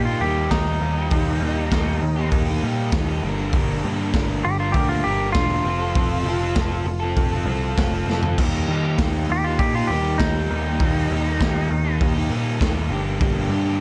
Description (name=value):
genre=garage rock duo or trio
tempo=99 BPM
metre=4/4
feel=straight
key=unclear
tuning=A4 = 440 Hz
part: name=clean lap steel guitar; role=melody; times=0.0-12.0 s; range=Eb4 to G4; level=-28 LUFS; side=equal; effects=plate reverb
part: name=crunchy overdriven guitar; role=riff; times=0.0-13.8 s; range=G2 to Bb4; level=-28 LUFS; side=equal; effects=none
part: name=overdriven picked electric bass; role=bass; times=0.0-13.8 s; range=E1 to Eb3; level=-26 LUFS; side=equal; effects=none
part: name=raw garage drum kit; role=drums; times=0.5-13.4 s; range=crash cymbal, hi-hat, kick drum, snare drum, toms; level=-26 LUFS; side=equal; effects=none
room=light reverb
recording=none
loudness=-21 LUFS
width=mono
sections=0.0-13.8 A section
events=drum fill 8.1-8.4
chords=0.0 Eb; 3.2 Gm; 5.7 F; 8.4 Eb; 12.9 Gm